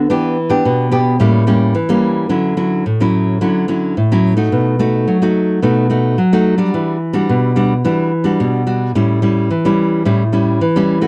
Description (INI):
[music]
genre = samba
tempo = 108 BPM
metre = 4/4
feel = straight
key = D major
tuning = A4 = 440 Hz
[part]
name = nylon-string guitar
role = solo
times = 0.0-11.1 s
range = A2 to G4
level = -15 LUFS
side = equal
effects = none
[sound]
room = moderate studio reverb, RT60 0.6 s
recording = dark, warm production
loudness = -15 LUFS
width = mono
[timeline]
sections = 0.0-2.3 A section; 2.3-11.1 B section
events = none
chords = 0.1 Em7; 1.2 A7b9; 2.3 Dmaj9; 4.5 B7; 6.7 Em9; 9.0 A7